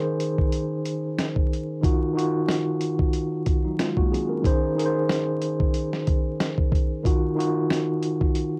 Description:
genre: hip hop, boom-bap hip-hop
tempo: 92 BPM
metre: 4/4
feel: swing 56% on 16ths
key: Eb dorian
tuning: A4 = 440 Hz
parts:
  - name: mellow tine electric piano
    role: accompaniment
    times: 0.0-8.6 s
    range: Eb3 to C5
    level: -27 LUFS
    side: equal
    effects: high-pass filter, low-pass filter
  - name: dusty soul sampler-style drum kit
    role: drums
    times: 0.2-8.5 s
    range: hi-hat, kick drum, snare drum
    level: -26 LUFS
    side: equal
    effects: cassette tape
room: light reverb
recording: home recording on cassette, vinyl crackle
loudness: -24 LUFS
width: mono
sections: 0.0-8.6 A section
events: none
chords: 0.0 Bb9sus4/Eb; 1.8 Ebmadd9; 4.4 Bb9sus4/Eb; 7.1 Ebmadd9

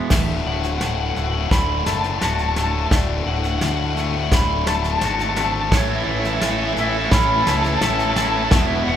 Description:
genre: post-rock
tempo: 86 BPM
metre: 4/4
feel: straight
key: D major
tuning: A4 = 441 Hz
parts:
  - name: clear symphonic string section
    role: sustained chords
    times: 0.0-9.0 s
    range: D3 to C#5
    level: -33 LUFS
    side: equal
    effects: none
  - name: twangy electric guitar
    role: arpeggios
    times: 0.0-9.0 s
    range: D2 to A4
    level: -29 LUFS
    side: left 4 dB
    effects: none
  - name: thick fuzz guitar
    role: riff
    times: 0.0-0.1, 5.7-9.0 s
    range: B2 to A4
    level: -24 LUFS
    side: right 7 dB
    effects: distortion
  - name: electric guitar through a small old amp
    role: melody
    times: 0.1-9.0 s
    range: C#5 to B5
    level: -24 LUFS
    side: equal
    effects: none
  - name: distorted electric guitar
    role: riff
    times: 0.1-9.0 s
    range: D2 to E3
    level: -25 LUFS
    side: left 7 dB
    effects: overdrive
  - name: fuzz fingered electric bass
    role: bass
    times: 0.1-9.0 s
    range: D1 to D2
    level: -25 LUFS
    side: equal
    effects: overdrive
  - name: soft brush drum kit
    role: drums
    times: 0.1-8.7 s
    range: crash cymbal, kick drum, snare drum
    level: -21 LUFS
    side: equal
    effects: none
room: wet recital hall reverb, RT60 1.3 s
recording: recorded in a church or concert hall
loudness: -17 LUFS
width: side -10 dB against mid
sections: 0.1-9.0 A section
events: build-up 0.1-9.0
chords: 0.1 D; 5.7 A

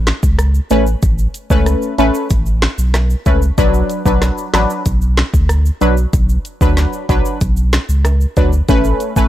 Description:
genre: dancehall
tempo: 94 BPM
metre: 4/4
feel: straight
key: B minor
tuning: A4 = 440 Hz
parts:
  - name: warm sub bass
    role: bass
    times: 0.0-9.3 s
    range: A1 to D2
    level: -14 LUFS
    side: equal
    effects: none
  - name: afro-pop drum kit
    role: drums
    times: 0.1-9.3 s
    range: finger snaps, hi-hat, kick drum, rim click, snare drum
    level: -16 LUFS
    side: equal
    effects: none
  - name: egg shaker and timbales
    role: percussion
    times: 0.2-9.3 s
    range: none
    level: -32 LUFS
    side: right 6 dB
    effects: none
  - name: synth brass stab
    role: accompaniment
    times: 0.7-9.3 s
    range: F#3 to B4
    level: -16 LUFS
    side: left 1 dB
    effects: chorus, phaser
room: little or no reverb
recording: dry, gritty hardware recording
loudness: -12 LUFS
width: side -13 dB against mid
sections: 0.0-9.3 A section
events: none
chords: 0.0 Aadd9; 3.6 Bm; 8.7 Aadd9

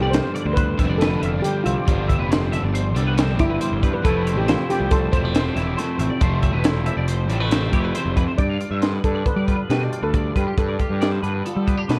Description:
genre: math rock and midwest emo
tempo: 138 BPM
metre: 5/4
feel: straight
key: unclear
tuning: A4 = 441 Hz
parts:
  - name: steel pan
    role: melody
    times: 0.0-12.0 s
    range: E4 to D5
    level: -28 LUFS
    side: equal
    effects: none
  - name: twangy electric guitar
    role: accompaniment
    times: 0.0-12.0 s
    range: E2 to F4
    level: -33 LUFS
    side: equal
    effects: none
  - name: twelve-string electric guitar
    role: arpeggios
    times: 0.0-12.0 s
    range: G4 to G5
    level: -33 LUFS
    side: equal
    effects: ensemble chorus
  - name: crunchy overdriven guitar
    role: riff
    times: 0.0-8.4 s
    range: F2 to D4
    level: -30 LUFS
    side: equal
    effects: none
  - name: fuzz picked electric bass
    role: bass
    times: 0.0-12.0 s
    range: E1 to G3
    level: -25 LUFS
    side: equal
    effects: overdrive
  - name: crisp fusion drum kit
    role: drums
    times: 0.1-12.0 s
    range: hi-hat, kick drum, snare drum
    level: -25 LUFS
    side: equal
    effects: none
room: light reverb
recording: worn, warbling old tape, cassette tape, warbly pitch drift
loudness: -21 LUFS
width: mono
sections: 0.0-8.4 A section; 8.4-12.0 B section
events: none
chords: 0.0 G7sus4; 4.0 Fmaj7; 8.4 G7

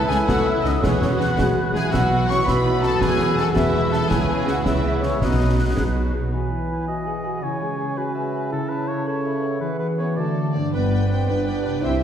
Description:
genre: cinematic, heroic adventure film score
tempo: 109 BPM (dotted quarters)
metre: 6/8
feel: straight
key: E major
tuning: A4 = 440 Hz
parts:
  - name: warm symphonic violin section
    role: melody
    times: 0.0-5.8, 10.7-12.0 s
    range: C#4 to G5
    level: -30 LUFS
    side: left 4 dB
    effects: none
  - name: mellow clarinet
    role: second line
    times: 0.0-12.0 s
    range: E4 to D5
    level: -31 LUFS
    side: left 1 dB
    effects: none
  - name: mellow hollow silver concert flute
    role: second line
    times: 0.0-10.5 s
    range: F#5 to F#6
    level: -31 LUFS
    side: left 1 dB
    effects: none
  - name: warm oboe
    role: second line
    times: 0.0-10.5 s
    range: A4 to D#5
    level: -32 LUFS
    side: right 1 dB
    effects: none
  - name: warm symphonic violin section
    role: second line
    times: 0.0-5.8, 10.0-12.0 s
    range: A4 to C#6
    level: -30 LUFS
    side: left 3 dB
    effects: none
  - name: warm symphonic viola section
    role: accompaniment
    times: 0.0-6.3, 10.7-12.0 s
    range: F#3 to E5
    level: -31 LUFS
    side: right 1 dB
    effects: none
  - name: bright trombone section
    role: sustained chords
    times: 0.0-12.0 s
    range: C#3 to C4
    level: -30 LUFS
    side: right 3 dB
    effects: none
  - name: dark French horn section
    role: sustained chords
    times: 0.0-6.0, 10.0-12.0 s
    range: A3 to A4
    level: -27 LUFS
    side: left 2 dB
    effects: none
  - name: concert harp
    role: arpeggios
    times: 0.0-12.0 s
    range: G2 to F#5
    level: -28 LUFS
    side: left 3 dB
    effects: none
  - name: dark trumpet section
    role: stabs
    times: 0.0-5.8 s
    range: C#5 to C#6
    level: -28 LUFS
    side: equal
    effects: none
  - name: clear symphonic double bass section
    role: bass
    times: 0.1-6.3, 10.7-12.0 s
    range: E1 to C#2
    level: -26 LUFS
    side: right 1 dB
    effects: none
  - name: warm symphonic cello section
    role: bass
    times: 0.1-6.3, 10.7-12.0 s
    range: C#2 to C#3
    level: -26 LUFS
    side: right 2 dB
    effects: none
  - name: concert snare drum, concert bass drum and clash cymbals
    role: drums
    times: 0.1-5.9 s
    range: none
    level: -26 LUFS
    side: equal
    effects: none
  - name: timpani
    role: percussion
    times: 5.2-5.7 s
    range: none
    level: barely audible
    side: none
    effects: none
room: wet scoring stage reverb, RT60 1.6 s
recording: heard from further back in the room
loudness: -19 LUFS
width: side -9 dB against mid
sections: 0.0-6.3 A section; 6.3-10.7 B section; 10.7-12.0 C section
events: none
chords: 0.0 Aadd9/C#; 0.8 Eadd9; 1.9 Bsus4; 3.0 Eadd9; 4.1 C#m7; 5.2 B; 6.3 Eadd9; 7.4 C#m7; 8.5 Aadd9/C#; 9.6 Eadd9; 10.2 D7; 10.7 G

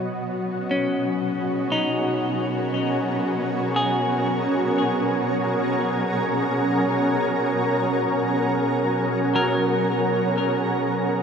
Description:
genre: ambient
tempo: 59 BPM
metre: 4/4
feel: straight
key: unclear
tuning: A4 = 440 Hz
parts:
  - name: shimmering ambient pad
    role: sustained chords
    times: 0.0-11.2 s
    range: F#3 to D#5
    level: -22 LUFS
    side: right 1 dB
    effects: chorus, built-in reverb
  - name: semi-hollow electric guitar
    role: arpeggios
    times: 0.0-11.2 s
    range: F#3 to A#4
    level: -27 LUFS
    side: left 1 dB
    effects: ping-pong delay
  - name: dark studio cello section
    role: bass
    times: 0.0-11.2 s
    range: B2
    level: -30 LUFS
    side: left 1 dB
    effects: none
  - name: bowed-like drone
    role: drone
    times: 0.0-11.2 s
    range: B3 to F#4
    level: -32 LUFS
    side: equal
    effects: built-in reverb
room: wet huge ambient reverb, RT60 7.5 s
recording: none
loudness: -20 LUFS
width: side -6 dB against mid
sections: 0.0-11.2 A section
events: none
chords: 0.0 F#/B

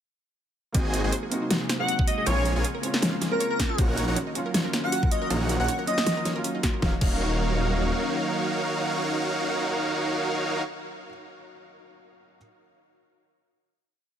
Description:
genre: future bass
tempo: 158 BPM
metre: 4/4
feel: swing 55% on 16ths, half-time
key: Eb dorian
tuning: A4 = 440 Hz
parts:
  - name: felt-muted upright piano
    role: accompaniment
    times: 0.7-12.4 s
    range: Gb3 to F5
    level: -34 LUFS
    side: right 1 dB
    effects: sidechain pumping, tape echo
  - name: airy breathy pad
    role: sustained chords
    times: 1.2-10.6 s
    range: C3 to F5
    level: -35 LUFS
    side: left 2 dB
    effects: chorus, sidechain pumping
  - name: wide unison pluck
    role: arpeggios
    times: 0.7-7.1 s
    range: C4 to Db5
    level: -36 LUFS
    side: right 2 dB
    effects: sidechain pumping, tape echo
  - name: dense compressed supersaw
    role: riff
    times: 0.7-10.6 s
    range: Eb4 to Ab5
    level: -29 LUFS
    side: right 1 dB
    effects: sidechain pumping, tape echo
  - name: wide detuned saw bass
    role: bass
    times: 0.7-7.9 s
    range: Eb1 to Bb1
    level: -27 LUFS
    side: equal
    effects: chorus, sidechain pumping
  - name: dubstep drum kit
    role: drums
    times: 0.7-7.1 s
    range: crash cymbal, hi-hat, snare drum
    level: -28 LUFS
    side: equal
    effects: overdrive
  - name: electronic kick drum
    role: drums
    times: 0.7-7.1 s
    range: none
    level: -24 LUFS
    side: equal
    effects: overdrive
  - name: airy dreamy lead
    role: melody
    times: 1.8-6.2 s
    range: Bb4 to Gb5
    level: -30 LUFS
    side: equal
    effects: chorus, sidechain pumping, tape echo
room: light reverb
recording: none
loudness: -23 LUFS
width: side -9 dB against mid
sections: 0.7-6.8 drop; 6.8-9.9 final chord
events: drop 0.7-6.8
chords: 0.7 Ab7; 2.3 Bbm7; 3.8 Ebm7/Bb; 6.8 Ebm9

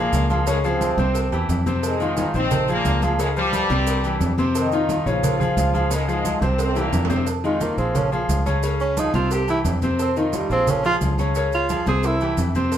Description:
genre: latin, salsa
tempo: 176 BPM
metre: 4/4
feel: straight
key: F minor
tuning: A4 = 439 Hz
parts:
  - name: bright trombone section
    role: melody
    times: 0.0-7.1 s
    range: G2 to F4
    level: -24 LUFS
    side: equal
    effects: none
  - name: bright grand piano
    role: accompaniment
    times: 0.0-12.8 s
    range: C3 to Db5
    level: -23 LUFS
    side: left 2 dB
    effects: none
  - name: fingered electric bass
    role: bass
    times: 0.0-12.8 s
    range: Bb1 to F2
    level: -24 LUFS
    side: equal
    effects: none
  - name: congas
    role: percussion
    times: 0.1-12.8 s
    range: none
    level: -28 LUFS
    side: right 1 dB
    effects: none
  - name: cowbell and bongos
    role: percussion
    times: 0.1-12.8 s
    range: none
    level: -33 LUFS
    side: left 2 dB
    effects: none
  - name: maracas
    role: percussion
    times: 0.1-12.8 s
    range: none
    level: -37 LUFS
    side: right 7 dB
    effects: none
  - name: timbales and agogo bells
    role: percussion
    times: 0.1-12.8 s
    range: none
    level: -32 LUFS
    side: right 8 dB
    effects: none
  - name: breathy tenor saxophone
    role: melody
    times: 7.5-12.4 s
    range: Eb3 to Ab4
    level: -22 LUFS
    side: right 3 dB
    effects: none
room: wet studio reverb, RT60 0.7 s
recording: band playing live in one room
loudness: -18 LUFS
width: side -10 dB against mid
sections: 0.0-7.3 A section; 7.3-12.8 B section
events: drum fill 6.6-7.3; tenor saxophone solo 7.3-12.8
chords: 0.5 Dbmaj7; 1.2 C; 1.8 Fm7; 2.5 Bbm7; 3.2 Dbmaj7; 3.9 C; 4.6 F5; 5.2 Bbm7; 5.9 Dbmaj7; 6.6 C7; 7.3 Fm7; 8.0 Bbm7; 8.6 Dbmaj7; 9.3 C; 10.0 Fm7; 10.7 Bbm7; 11.4 Dbmaj7; 12.0 C

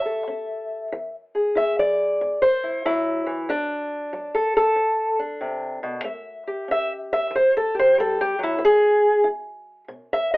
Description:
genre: acoustic country blues, solo or duo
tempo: 94 BPM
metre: 4/4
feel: swing 66% on 8ths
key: unclear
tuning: A4 = 440 Hz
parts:
  - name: fingerpicked old ladder-braced acoustic guitar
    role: solo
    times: 0.0-10.4 s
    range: A2 to E5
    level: -20 LUFS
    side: equal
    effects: none
room: light reverb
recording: telephone sound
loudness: -20 LUFS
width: side -21 dB against mid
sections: 0.0-10.4 A section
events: steel-string acoustic guitar solo 0.0-10.4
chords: 0.0 A7; 0.9 E7; 3.5 D7; 6.0 A7; 8.6 E

